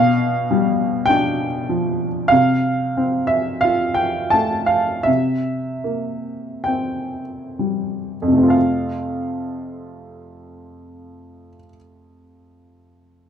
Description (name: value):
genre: classical, romantic nocturne for solo piano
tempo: 31-53 BPM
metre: 4/4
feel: rubato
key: F major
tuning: A4 = 437 Hz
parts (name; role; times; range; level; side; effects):
- clear upright piano; solo; 0.0-13.3 s; F2 to A5; -17 LUFS; equal; none
room: moderate large studio reverb, RT60 1.0 s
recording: dark, warm production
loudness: -17 LUFS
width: side -8 dB against mid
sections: 0.0-8.5 A section; 8.5-13.3 B section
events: slowing down 0.0-8.5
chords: 0.0 G7/B; 2.3 F/C; 5.1 C7; 8.5 F